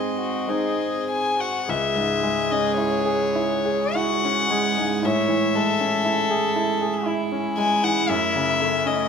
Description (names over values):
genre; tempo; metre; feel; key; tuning
classical, slow romantic movement for piano quartet; 48-60 BPM; 3/4; rubato; C# minor; A4 = 439 Hz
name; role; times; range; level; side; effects
rich violin; melody; 0.0-9.1 s; C#5 to G#5; -24 LUFS; left 5 dB; none
rich cello; second line; 0.0-9.1 s; G#3 to B#3; -30 LUFS; right 7 dB; none
rich violin; second line; 0.0-9.1 s; E4 to C#5; -27 LUFS; left 1 dB; none
bright grand piano; accompaniment; 0.0-9.1 s; C#2 to G#4; -25 LUFS; equal; none
room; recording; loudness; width
moderate recital hall reverb, RT60 1.5 s; none; -20 LUFS; side -6 dB against mid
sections
0.0-1.7 A section; 1.7-9.1 B section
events
none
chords
0.0 G#; 1.7 C#m; 5.0 Amaj7; 8.1 F#m7